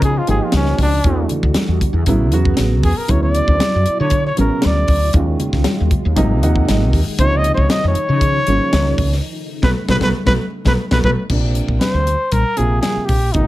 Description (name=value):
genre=electric jazz fusion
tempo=117 BPM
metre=4/4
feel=straight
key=unclear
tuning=A4 = 441 Hz
part: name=mellow trumpet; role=melody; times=0.0-13.5 s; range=Db4 to Eb5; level=-19 LUFS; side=equal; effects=slapback echo
part: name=soft string machine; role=sustained chords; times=0.0-11.3 s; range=B2 to Gb5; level=-28 LUFS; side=equal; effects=ensemble chorus
part: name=woody fretless electric bass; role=bass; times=0.0-13.5 s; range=Ab1 to D3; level=-17 LUFS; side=equal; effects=ensemble chorus
part: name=tight funk drum kit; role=drums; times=0.0-13.5 s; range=crash cymbal, hi-hat, kick drum, snare drum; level=-20 LUFS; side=equal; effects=none
part: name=congas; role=percussion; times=0.0-13.4 s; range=none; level=-24 LUFS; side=left 3 dB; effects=none
part: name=dark concert grand piano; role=accompaniment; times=0.3-13.5 s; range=C3 to Gb5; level=-21 LUFS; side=right 2 dB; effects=none
room=light reverb, small room ambience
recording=none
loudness=-14 LUFS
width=side -16 dB against mid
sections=0.0-11.3 A section; 11.3-13.5 B section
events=trumpet solo 0.0-11.3; grand piano fill 6.2-7.2; band accent 9.2-11.3; drum fill 10.3-11.3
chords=0.0 Dbadd9; 1.0 Em9; 2.1 Aadd9; 3.1 Dmaj9; 5.1 Ebm11; 6.2 Ab7; 7.2 Dbmaj9; 9.2 B9; 11.3 Bb